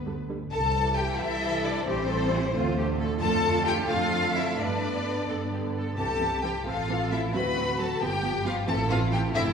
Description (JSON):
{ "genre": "quick classical-period movement for string orchestra", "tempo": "88 BPM (dotted quarters)", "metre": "6/8", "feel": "straight", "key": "C major", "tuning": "A4 = 445 Hz", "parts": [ { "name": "warm studio violin section", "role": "melody", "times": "0.0-9.4 s", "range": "B4 to B5", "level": "-30 LUFS", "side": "left 4 dB", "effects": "none" }, { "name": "rich studio double bass section", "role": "bass", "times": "0.0-9.5 s", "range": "F1 to G2", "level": "-31 LUFS", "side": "right 2 dB", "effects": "none" }, { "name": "dark studio viola section", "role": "accompaniment", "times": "0.1-9.4 s", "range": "D3 to C4", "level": "-32 LUFS", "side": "right 2 dB", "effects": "none" }, { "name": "rich studio violin section", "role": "second line", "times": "0.5-9.5 s", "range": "C4 to B4", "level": "-31 LUFS", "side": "left 3 dB", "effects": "none" }, { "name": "rich studio cello section", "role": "bass", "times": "1.2-9.5 s", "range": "E4 to B4", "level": "-34 LUFS", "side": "right 2 dB", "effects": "none" } ], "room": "wet concert hall reverb, RT60 1.9 s", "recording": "heard from further back in the room", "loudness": "-24 LUFS", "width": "side -6 dB against mid", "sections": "0.5-9.5 A section", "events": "none", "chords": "0.0 G; 0.5 C; 1.9 Am7; 2.5 Dm; 3.2 Dm/F; 4.6 G; 6.0 C; 6.7 Am; 7.3 D7; 8.0 G7; 8.7 Am" }